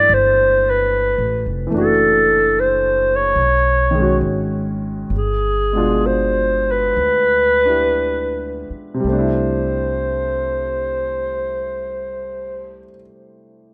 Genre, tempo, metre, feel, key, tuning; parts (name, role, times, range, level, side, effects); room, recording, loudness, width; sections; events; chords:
jazz ballad; 54-74 BPM; 4/4; swing 69% on 8ths; C major; A4 = 440 Hz
breathy clarinet; melody; 0.0-12.9 s; Ab4 to D5; -19 LUFS; equal
warm concert grand piano; accompaniment; 0.0-13.7 s; B2 to G4; -25 LUFS; equal
upright bass; bass; 0.0-12.8 s; F1 to D2; -27 LUFS; equal
light reverb, studio ambience; rough home demo mix; -17 LUFS; mono
0.0-5.1 A section; 5.1-9.0 B section; 9.0-13.5 C section
slowing down 1.7-9.0
0.0 C6; 1.7 Dadd9/F#; 3.4 B; 5.1 G7b9; 9.0 C6